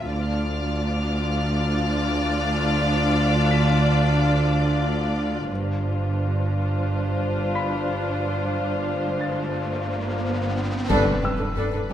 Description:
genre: cinematic, suspense film score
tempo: 89 BPM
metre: 4/4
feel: straight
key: unclear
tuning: A4 = 441 Hz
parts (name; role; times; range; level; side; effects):
- rich chamber violin section; melody; 0.0-11.9 s; B4 to D5; -31 LUFS; left 3 dB; none
- rich chamber viola section; accompaniment; 0.0-11.9 s; D4 to F4; -27 LUFS; left 2 dB; none
- rich chamber double bass section; bass; 0.0-11.9 s; G1 to D2; -26 LUFS; right 1 dB; none
- warm chamber cello section; bass; 0.0-11.9 s; D2 to G2; -26 LUFS; right 1 dB; none
- bright baby grand piano; texture; 0.0-11.9 s; B5 to B6; -36 LUFS; left 2 dB; none
- warm chamber violin section; texture; 0.1-5.1 s; D6 to A6; -32 LUFS; left 2 dB; none
- riser and impact; sound effects; 8.7-11.9 s; none; -31 LUFS; equal; none
- warm chamber violin section; second line; 10.9-11.9 s; G4 to A4; -27 LUFS; left 2 dB; none
- solo taiko drums; drums; 10.9-11.9 s; none; -31 LUFS; equal; none
room: moderate scoring stage reverb, RT60 2.0 s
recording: none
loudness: -21 LUFS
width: side -10 dB against mid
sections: 0.0-10.9 A section; 10.9-11.9 B section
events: riser 8.7-10.9; band accent 10.9-11.6; impact 10.9-11.9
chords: 0.1 Dm; 5.5 G7sus4; 10.9 Gadd9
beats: | 0.10 0.78 1.45 2.13 | 2.80 3.48 4.15 4.82 | 5.50 6.17 6.85 7.52 | 8.19 8.87 9.54 10.22 | 10.89 11.56

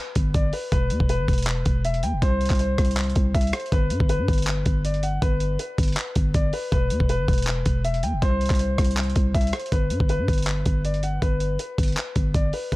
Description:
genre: hip hop, trap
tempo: 160 BPM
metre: 4/4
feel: half-time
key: G major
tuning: A4 = 444 Hz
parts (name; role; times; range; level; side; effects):
- dark grand piano; melody; 0.0-12.8 s; B4 to G5; -29 LUFS; left 2 dB; low-pass filter, digital delay
- growling 808-style bass; bass; 0.2-12.8 s; E1 to G2; -24 LUFS; equal; none
- dusty soul sampler-style drum kit; drums; 0.2-12.8 s; handclaps, hi-hat, kick drum, rim click; -24 LUFS; equal; none
room: digital ambience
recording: dark, warm production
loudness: -20 LUFS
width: side -19 dB against mid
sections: 0.0-9.7 A section; 9.7-12.8 B section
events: none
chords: 0.0 G; 0.7 E5; 2.2 N.C.; 3.7 G; 6.7 E5; 8.2 N.C.; 9.7 G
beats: 0.35 | 0.72 1.10 1.47 1.85 | 2.22 2.60 2.97 3.35 | 3.72 4.10 4.47 4.85 | 5.22 5.60 5.97 6.35 | 6.72 7.10 7.47 7.85 | 8.22 8.60 8.97 9.35 | 9.72 10.10 10.47 10.85 | 11.22 11.60 11.97 12.35 | 12.72

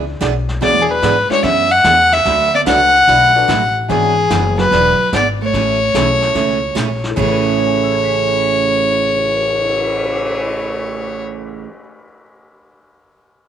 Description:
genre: country, western swing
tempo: 146 BPM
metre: 4/4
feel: swing 67% on 8ths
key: A major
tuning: A4 = 439 Hz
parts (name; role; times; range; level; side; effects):
- picked steel-string acoustic guitar; accompaniment; 0.0-11.7 s; A2 to B4; -21 LUFS; right 10 dB; none
- warm upright piano; accompaniment; 0.0-12.2 s; A2 to E7; -27 LUFS; left 12 dB; none
- upright bass; bass; 0.0-11.6 s; E1 to G#2; -23 LUFS; left 2 dB; none
- vintage brush drum kit; drums; 0.2-10.4 s; brushed snare drum, crash cymbal, cymbal swell, hi-hat, kick drum, snare drum; -26 LUFS; left 2 dB; none
- warm fiddle; melody; 0.6-11.2 s; G#4 to F#5; -13 LUFS; left 1 dB; none
- hollow-body jazz guitar; second line; 0.6-11.7 s; E3 to D4; -24 LUFS; right 10 dB; none
room: moderate plate reverb, RT60 1.7 s, studio ambience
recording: 1960s-style stereo with parts hard left and right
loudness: -12 LUFS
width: side -9 dB against mid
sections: 0.0-7.2 A section; 7.2-10.5 B section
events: none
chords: 0.0 E7; 0.6 E13; 2.3 Bm9; 3.9 E13; 5.5 Amaj7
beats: 0.21 | 0.62 1.03 1.44 1.85 | 2.26 2.67 3.08 3.49 | 3.90 4.31 4.72 5.13 | 5.54 5.95 6.36 6.77 | 7.18 7.59 8.00 8.41 | 8.82 9.23 9.64 10.05

